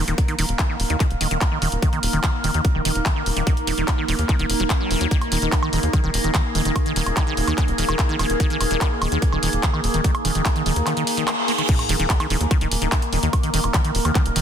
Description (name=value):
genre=psychedelic trance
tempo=146 BPM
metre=4/4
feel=straight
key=unclear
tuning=A4 = 442 Hz
part: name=overtone-sweeping drone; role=sustained chords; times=0.0-14.4 s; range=Bb3 to Bb4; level=-27 LUFS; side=equal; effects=chorus, built-in reverb, sidechain pumping
part: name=liquid acid bass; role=riff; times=0.0-14.4 s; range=Eb3 to Bb3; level=-26 LUFS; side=right 1 dB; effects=phaser, auto-pan, sidechain pumping, tape echo
part: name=tight sequencer bass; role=bass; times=0.0-14.4 s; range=Eb1 to Eb2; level=-24 LUFS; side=equal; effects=none
part: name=deep dark ambient pad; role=texture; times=0.5-14.4 s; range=Eb4 to Eb5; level=-30 LUFS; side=right 2 dB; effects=chorus, built-in reverb, sidechain pumping
part: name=big-room dance drum kit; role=drums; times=0.1-14.4 s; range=crash cymbal, handclaps, hi-hat, woodblock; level=-26 LUFS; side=equal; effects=studio reverb
part: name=electronic kick drum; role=drums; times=0.2-14.2 s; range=none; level=-20 LUFS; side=equal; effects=studio reverb
part: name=reverse cymbal and sub drop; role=sound effects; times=11.1-13.3 s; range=none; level=-30 LUFS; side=right 4 dB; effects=none
room=light reverb, digital ambience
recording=dense, heavily limited modern master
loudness=-18 LUFS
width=side -8 dB against mid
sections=0.0-11.7 A section; 11.7-14.4 B section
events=reverse cymbal 11.1-11.7; band accent 11.3; drop 11.7-14.4; impact 11.7-13.3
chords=0.0 Eb5